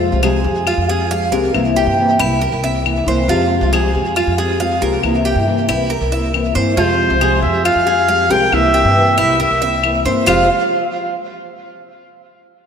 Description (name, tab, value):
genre	latin, Cuban son and guajira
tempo	138 BPM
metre	4/4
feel	straight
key	F minor, F harmonic minor from 6.8 s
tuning	A4 = 440 Hz
part	nylon-string guitar	accompaniment	0.0-10.4 s	F2 to G4	-18 LUFS	left 3 dB	ensemble chorus
part	Cuban tres	arpeggios	0.0-10.5 s	E4 to F5	-18 LUFS	right 2 dB	diffuse ambient delay
part	upright bass	bass	0.0-10.5 s	F1 to G2	-20 LUFS	equal	none
part	claves	percussion	0.2-10.4 s	none	-24 LUFS	left 10 dB	none
part	clear trumpet	melody	6.8-10.5 s	C5 to G5	-16 LUFS	equal	diffuse ambient delay
room	wet lush hall reverb, RT60 2.7 s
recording	dreamy mix soaked in reverb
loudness	-13 LUFS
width	side -7 dB against mid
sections	0.0-6.8 A section; 6.8-10.3 B section; 10.3-12.0 C section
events	none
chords	0.0 Fmadd9; 1.5 C7; 3.3 Fmadd9; 5.0 C7; 6.8 Fmadd9; 8.5 C7; 10.3 F5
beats	0.23 0.67 1.11 | 1.54 1.98 2.42 2.85 | 3.29 3.72 4.16 4.60 | 5.03 5.47 5.90 6.34 | 6.78 7.21 7.65 8.09 | 8.52 8.96 9.39 9.83 | 10.27